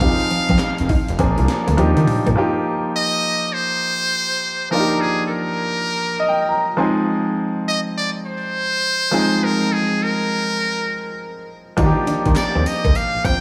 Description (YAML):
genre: R&B, new jack swing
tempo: 102 BPM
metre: 4/4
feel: swing 64% on 16ths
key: unclear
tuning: A4 = 440 Hz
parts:
  - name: trumpet with metal mute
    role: melody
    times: 0.0-13.4 s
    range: Ab4 to G5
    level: -23 LUFS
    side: equal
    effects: digital delay
  - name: clear baby grand piano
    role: accompaniment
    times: 0.0-13.4 s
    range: F3 to C6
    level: -23 LUFS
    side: equal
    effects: none
  - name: direct-recorded clean electric guitar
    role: riff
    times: 0.0-2.3, 11.8-13.4 s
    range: Bb3 to F4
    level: -30 LUFS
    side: equal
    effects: none
  - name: fat analog bass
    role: bass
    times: 0.0-2.4, 11.8-13.4 s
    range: F1 to Eb3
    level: -20 LUFS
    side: equal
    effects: none
  - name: breakbeat sampler-style drum kit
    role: drums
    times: 0.0-2.4, 11.8-13.4 s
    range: handclaps, hi-hat, kick drum, snare drum, tambourine, toms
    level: -24 LUFS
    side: equal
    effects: gated reverb
room: moderate echo chamber reverb, RT60 1.9 s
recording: none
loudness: -19 LUFS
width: mono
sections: 0.0-2.4 A section; 2.4-13.4 B section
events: drum fill 1.8-2.4; grand piano fill 5.9-7.1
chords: 0.0 Fm7; 1.2 Bb7; 1.8 Ebmaj9; 6.8 Fm7; 11.8 Ebmaj9